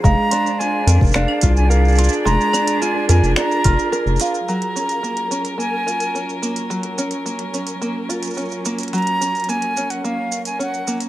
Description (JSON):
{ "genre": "folktronica", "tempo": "108 BPM", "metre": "4/4", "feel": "straight", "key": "Gb lydian", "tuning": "A4 = 443 Hz", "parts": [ { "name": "breathy silver concert flute", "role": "melody", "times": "0.0-11.0 s", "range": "F5 to Bb5", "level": "-22 LUFS", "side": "right 1 dB", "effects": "tape echo, plate reverb" }, { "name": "celesta", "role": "second line", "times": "0.0-4.5 s", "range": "F4 to F6", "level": "-27 LUFS", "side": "right 4 dB", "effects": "ping-pong delay, plate reverb" }, { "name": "dark string quartet", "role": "sustained chords", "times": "0.0-11.1 s", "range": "Gb3 to C5", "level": "-25 LUFS", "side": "equal", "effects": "plate reverb" }, { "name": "open-back banjo", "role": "arpeggios", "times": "0.0-11.1 s", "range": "Gb3 to Bb4", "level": "-24 LUFS", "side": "right 1 dB", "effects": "low-pass filter, tape echo, plate reverb" }, { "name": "round analog bass", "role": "bass", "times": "0.0-4.2 s", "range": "F1 to F2", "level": "-14 LUFS", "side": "equal", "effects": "tube saturation" }, { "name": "electronic kick drum", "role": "drums", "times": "0.0-3.8 s", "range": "none", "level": "-16 LUFS", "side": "equal", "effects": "none" }, { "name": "organic electronic drum kit", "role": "drums", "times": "0.0-11.1 s", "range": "claves, finger snaps, hi-hat, shaker", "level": "-26 LUFS", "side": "right 3 dB", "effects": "none" } ], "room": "moderate small room reverb, RT60 0.5 s", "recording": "none", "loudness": "-16 LUFS", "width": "side -15 dB against mid", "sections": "0.0-4.5 A section; 4.5-11.1 B section", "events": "none", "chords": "0.0 Bb7/F; 4.5 Gbmaj7", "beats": "| 0.04 0.59 1.15 1.70 | 2.26 2.81 3.37 3.93 | 4.48 5.04 5.59 6.15 | 6.70 7.26 7.82 8.37 | 8.93 9.48 10.04 10.59" }